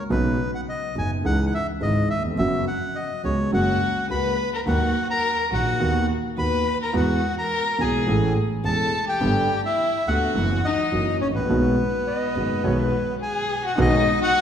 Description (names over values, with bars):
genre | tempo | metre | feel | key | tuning
tango | 105 BPM | 4/4 | rubato | B major | A4 = 440 Hz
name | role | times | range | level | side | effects
bandoneon | melody | 0.0-14.4 s | B4 to B5 | -26 LUFS | equal | none
warm concert grand piano | accompaniment | 0.1-14.0 s | E1 to G#4 | -24 LUFS | right 1 dB | none
rich double bass | bass | 0.1-14.0 s | E1 to E2 | -28 LUFS | right 1 dB | none
warm violin | second line | 3.5-14.4 s | B3 to B4 | -26 LUFS | left 4 dB | none
warm clarinet | second line | 12.1-13.2 s | B4 to D#5 | -32 LUFS | right 2 dB | none
room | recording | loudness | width
wet recital hall reverb, RT60 1.8 s | recorded in a church or concert hall | -20 LUFS | side -8 dB against mid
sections
0.0-13.8 A section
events
stop 13.2-13.8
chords
0.1 Badd9; 1.3 C#madd9; 2.4 F#sus4; 3.5 F#add9; 4.7 D#m; 5.8 Bmaj7/D#; 7.0 Eadd9; 8.1 Amaj7; 9.2 Gadd9; 10.4 F#7sus4; 10.9 F#7; 11.5 B6